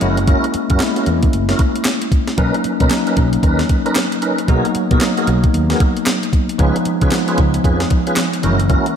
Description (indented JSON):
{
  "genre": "R&B, new jack swing",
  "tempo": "114 BPM",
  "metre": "4/4",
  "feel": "swing 62% on 16ths",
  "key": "B major",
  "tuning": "A4 = 440 Hz",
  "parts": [
    { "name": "bell-like tine electric piano", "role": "accompaniment", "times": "0.0-9.0 s", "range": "E3 to E4", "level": "-19 LUFS", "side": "left 1 dB", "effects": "medium stereo tremolo" },
    { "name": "tonewheel organ", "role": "stabs", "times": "0.0-8.9 s", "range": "B3 to B4", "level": "-21 LUFS", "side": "right 1 dB", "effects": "overdrive, chorus vibrato, slow rotary speaker, slapback echo" },
    { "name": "fretless electric bass", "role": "bass", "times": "0.0-8.7 s", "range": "F#1 to C#3", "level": "-19 LUFS", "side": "equal", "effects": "none" },
    { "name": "clean 12-bit digital drum machine", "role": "drums", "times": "0.0-9.0 s", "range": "handclaps, hi-hat, kick drum, snare drum", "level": "-17 LUFS", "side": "equal", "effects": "overdrive" }
  ],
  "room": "moderate concert hall reverb, RT60 1.9 s, digital ambience",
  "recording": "big arena sound",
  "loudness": "-13 LUFS",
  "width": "side -8 dB against mid",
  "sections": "0.0-9.0 A section",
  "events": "none",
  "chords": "0.0 F#7; 2.4 Bmaj9; 4.5 G#m9/B; 6.6 C#7; 8.4 F#9"
}